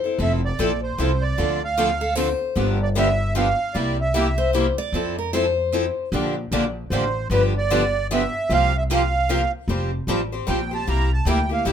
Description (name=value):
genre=acoustic string swing (jazz manouche)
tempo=152 BPM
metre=3/4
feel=swing 62% on 8ths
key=F major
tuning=A4 = 438 Hz
part: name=picked steel-string acoustic guitar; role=second line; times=0.0-6.1 s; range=A4 to D5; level=-24 LUFS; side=left 5 dB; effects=none
part: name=picked steel-string acoustic guitar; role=accompaniment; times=0.0-11.7 s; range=C3 to C5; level=-26 LUFS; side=left 4 dB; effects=none
part: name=accordion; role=melody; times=0.2-4.5, 6.9-11.7 s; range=B4 to Bb5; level=-23 LUFS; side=right 4 dB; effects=light tremolo tuning
part: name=picked steel-string acoustic guitar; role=accompaniment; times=0.2-11.7 s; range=C3 to C5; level=-28 LUFS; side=right 4 dB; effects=none
part: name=upright bass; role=bass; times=0.2-11.7 s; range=F1 to F2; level=-24 LUFS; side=equal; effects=none
room=light reverb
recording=minimal, uncompressed stereo recording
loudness=-19 LUFS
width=side -8 dB against mid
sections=0.2-9.7 A section; 9.7-11.7 B section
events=accordion solo 9.7-11.7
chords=0.2 Fmaj7; 1.4 Dm7; 2.6 G7; 3.7 C7; 4.9 Fmaj7; 6.1 Bb6; 7.3 G7; 8.5 C7sus4; 9.7 Fsus2; 10.9 C7